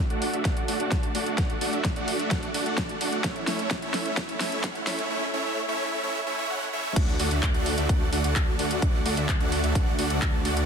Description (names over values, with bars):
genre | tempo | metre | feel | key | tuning
EDM, festival progressive house | 129 BPM | 4/4 | straight | D major | A4 = 439 Hz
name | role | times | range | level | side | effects
supersaw chords | riff | 0.1-10.7 s | A3 to A5 | -27 LUFS | right 1 dB | sidechain pumping, low-pass filter, dub echo
big-room dance drum kit | drums | 0.1-10.7 s | crash cymbal, handclaps, hi-hat, snare drum | -31 LUFS | equal | overdrive
electronic kick drum | drums | 0.5-10.3 s | none | -27 LUFS | equal | none
wide detuned saw bass | bass | 7.0-10.7 s | D2 | -28 LUFS | equal | chorus, sidechain pumping
room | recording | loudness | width
light reverb, digital ambience | dense, heavily limited modern master, high-pass filter | -24 LUFS | side -6 dB against mid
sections
0.0-7.0 A section; 7.0-10.7 B section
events
build-up 0.0-7.0; drum fill 0.0-5.1; filter sweep on supersaw synth 0.0-7.0; filter sweep 0.0-7.0; drop 7.0-10.7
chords
0.0 D; 3.2 A; 7.0 D